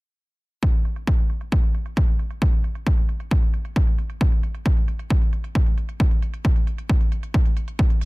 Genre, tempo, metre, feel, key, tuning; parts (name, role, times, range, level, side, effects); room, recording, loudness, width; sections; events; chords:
uplifting trance; 134 BPM; 4/4; straight
electronic hi-hat; drums; 0.6-8.1 s; -47 LUFS; right 5 dB; low-pass filter on hats, low-pass filter on room
electronic kick drum; drums; 0.6-7.9 s; -19 LUFS; equal
little or no reverb; dense, heavily limited modern master; -19 LUFS; side -23 dB against mid
0.6-8.1 A section
filter sweep on drum 0.6-8.1